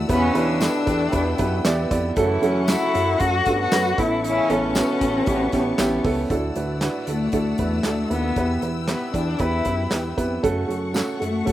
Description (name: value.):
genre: piano-driven pop.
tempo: 116 BPM.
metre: 4/4.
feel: swing 56% on 16ths.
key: D major.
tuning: A4 = 440 Hz.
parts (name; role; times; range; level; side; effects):
warm cello; melody; 0.0-11.5 s; A3 to F#4; -23 LUFS; left 3 dB; slapback echo.
warm upright piano; accompaniment; 0.0-11.5 s; A2 to D5; -24 LUFS; right 2 dB; none.
warm symphonic string section; sustained chords; 0.0-11.5 s; A4 to E6; -34 LUFS; left 4 dB; none.
chorused synth bass; bass; 0.0-11.5 s; A1 to G2; -27 LUFS; equal; none.
warm French horn section; second line; 0.1-5.7 s; A2 to F#4; -28 LUFS; right 2 dB; slapback echo.
natural country drum kit; drums; 0.1-11.5 s; handclaps, hi-hat, kick drum, snare drum; -27 LUFS; right 1 dB; none.
tambourine; percussion; 0.6-5.9, 10.9-11.1 s; none; -38 LUFS; left 4 dB; none.
room: little or no reverb.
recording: recorded outdoors, with no room sound.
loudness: -19 LUFS.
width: side -13 dB against mid.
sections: 0.0-6.3 A section; 6.3-11.5 B section.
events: none.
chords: 0.1 Em; 2.2 F#m; 4.0 Aadd9; 6.3 Dadd9; 8.4 Em; 10.4 F#m.